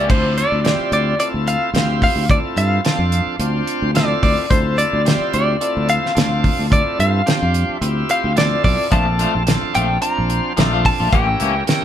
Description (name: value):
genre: straight-eighth soul blues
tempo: 109 BPM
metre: 4/4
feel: swing 54% on 16ths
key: D minor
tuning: A4 = 440 Hz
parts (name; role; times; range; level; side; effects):
- direct-recorded clean electric guitar; melody; 0.0-11.8 s; C5 to Bb5; -20 LUFS; left 1 dB; tremolo
- bright tonewheel organ; accompaniment; 0.0-11.8 s; C4 to C5; -23 LUFS; right 2 dB; slow rotary speaker, overdrive
- clean electric guitar; stabs; 0.0-0.1, 8.9-11.8 s; E3 to G4; -23 LUFS; left 6 dB; tremolo
- fingered electric bass; bass; 0.0-11.6 s; A1 to G2; -20 LUFS; equal; none
- damped 70s drum kit; drums; 0.1-11.8 s; crash cymbal, hi-hat, kick drum, snare drum; -19 LUFS; equal; none
room: moderate studio reverb, RT60 0.8 s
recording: band playing live in one room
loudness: -15 LUFS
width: side -10 dB against mid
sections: 0.1-11.8 A section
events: none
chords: 0.1 Dm7; 8.9 Bbmaj7; 11.1 A7b9